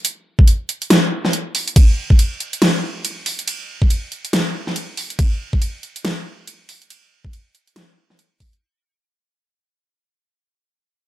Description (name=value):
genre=dubstep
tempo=140 BPM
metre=4/4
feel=swing 60% on 16ths, half-time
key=none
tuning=none
part: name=dubstep drum kit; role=drums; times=0.0-8.6 s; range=hi-hat, ride cymbal, snare drum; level=-19 LUFS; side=equal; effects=overdrive
part: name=electronic kick drum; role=drums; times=0.4-8.5 s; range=none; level=-12 LUFS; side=equal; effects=overdrive
room=light reverb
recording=none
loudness=-16 LUFS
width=side -14 dB against mid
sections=0.0-8.6 A section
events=drop 0.0-8.6; fade-out 1.8-8.6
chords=none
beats=| 0.05 0.47 0.90 1.33 | 1.76 2.19 2.62 3.05 | 3.48 3.90 4.33 4.76 | 5.19 5.62 6.05 6.47 | 6.90 7.33 7.76 8.19